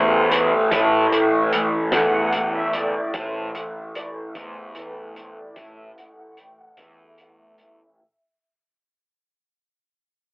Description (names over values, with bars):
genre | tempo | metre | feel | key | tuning
psychedelic rock | 50 BPM (dotted quarters) | 6/8 | straight | A dorian | A4 = 440 Hz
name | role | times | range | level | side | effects
muted studio string section | sustained chords | 0.0-8.0 s | B4 to G5 | -29 LUFS | equal | low-pass filter
fuzz guitar | riff | 0.0-8.0 s | A2 to A3 | -21 LUFS | equal | distortion, phaser, low-pass filter
fuzz picked electric bass | bass | 0.0-7.8 s | E2 to A2 | -23 LUFS | equal | overdrive
cloth-damped thuddy drum kit | drums | 0.3-7.8 s | hi-hat, kick drum, snare drum | -26 LUFS | equal | none
room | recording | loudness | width
light reverb | rough rehearsal-room recording, telephone sound | -18 LUFS | side -35 dB against mid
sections
0.0-8.0 A section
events
fade-out 0.0-8.0; string section solo 0.0-8.0; filter sweep 0.0-8.0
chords
0.0 Am